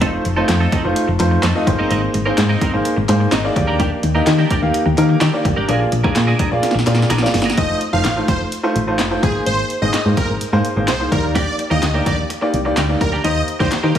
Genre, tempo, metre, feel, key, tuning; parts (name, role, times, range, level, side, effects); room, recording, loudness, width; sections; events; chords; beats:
dance-pop; 127 BPM; 4/4; straight; A4 = 440 Hz
warm baby grand piano; accompaniment; 0.0-14.0 s; A3 to G5; -20 LUFS; equal; sidechain pumping
twelve-string electric guitar; riff; 0.0-7.6, 11.3-14.0 s; C4 to Bb4; -24 LUFS; right 3 dB; analog chorus
solid FM bass; bass; 0.0-13.9 s; F1 to Eb3; -18 LUFS; left 1 dB; sidechain pumping
punchy analog drum machine; drums; 0.0-14.0 s; handclaps, hi-hat, kick drum, snare drum; -21 LUFS; left 1 dB
group handclap; percussion; 0.5-13.8 s; -32 LUFS; left 6 dB
supersaw chords; melody; 7.6-14.0 s; Ab4 to F5; -22 LUFS; right 1 dB; sidechain pumping, tape echo
light reverb, digital ambience; heavily compressed radio sound, multiband compression, small room ambience; -14 LUFS; side -10 dB against mid
0.0-7.6 A section; 7.6-14.0 B section
grand piano fill 3.1-3.8; drum fill 6.6-7.6
0.0 F7; 1.7 Abadd9; 3.6 Ebmaj7; 5.7 Bb7; 7.6 F7; 9.2 Abadd9; 11.1 Ebmaj7; 13.2 Cm7/Eb
| 0.02 0.49 0.96 1.43 | 1.91 2.38 2.85 3.32 | 3.80 4.27 4.74 5.21 | 5.69 6.16 6.63 7.10 | 7.58 8.05 8.52 8.99 | 9.46 9.94 10.41 10.88 | 11.36 11.83 12.30 12.77 | 13.24 13.72